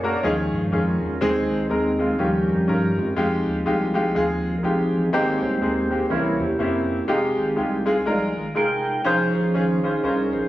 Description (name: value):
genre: uptempo gospel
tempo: 122 BPM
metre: 4/4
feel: swing 59% on 8ths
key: unclear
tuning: A4 = 440 Hz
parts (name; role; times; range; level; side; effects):
- clear grand piano; accompaniment; 0.0-10.4 s; Ab2 to C5; -23 LUFS; left 1 dB; none
- percussive tonewheel organ; sustained chords; 0.0-10.5 s; Eb3 to G5; -22 LUFS; right 1 dB; fast rotary speaker
- round analog bass; bass; 0.0-10.5 s; F1 to G2; -32 LUFS; equal; none
room: light reverb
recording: recorded on a phone in the room, studio reverb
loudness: -19 LUFS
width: side -15 dB against mid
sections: 0.0-10.5 A section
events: tonewheel organ solo 0.0-10.5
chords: 0.2 Eb9sus4; 1.2 Ab; 2.2 Eb9; 3.2 Fm9; 5.1 Abmaj9; 6.1 C7b9; 7.1 Fm9; 9.1 Dbmaj9/F